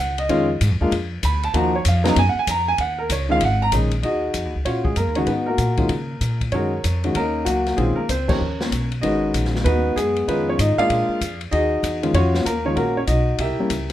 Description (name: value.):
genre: jazz piano trio.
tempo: 192 BPM.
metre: 4/4.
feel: swing 64% on 8ths.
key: Eb minor.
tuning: A4 = 436 Hz.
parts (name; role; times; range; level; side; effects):
warm grand piano; melody; 0.0-13.9 s; Db3 to B5; -20 LUFS; equal; none.
upright bass; bass; 0.0-13.9 s; Ab1 to Db3; -23 LUFS; equal; none.
open jazz drum kit; drums; 0.2-13.9 s; crash cymbal, hi-hat, kick drum, ride cymbal, snare drum; -28 LUFS; left 2 dB; none.
room: moderate club ambience, RT60 0.5 s.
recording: none.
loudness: -18 LUFS.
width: side -12 dB against mid.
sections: 0.0-4.0 A section; 4.0-13.9 B section.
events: grand piano solo 0.0-4.0; band accent 8.2.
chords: 0.3 Eb9sus4; 0.9 Dm6; 1.5 Ebm11; 5.3 Abm9; 5.9 Bbm; 6.5 Gb6; 7.8 Bbm9; 8.4 Eb7(no3); 9.0 Abm11; 10.3 Fm7b5; 10.9 Bb7; 11.5 Ebm11; 13.4 C7b9.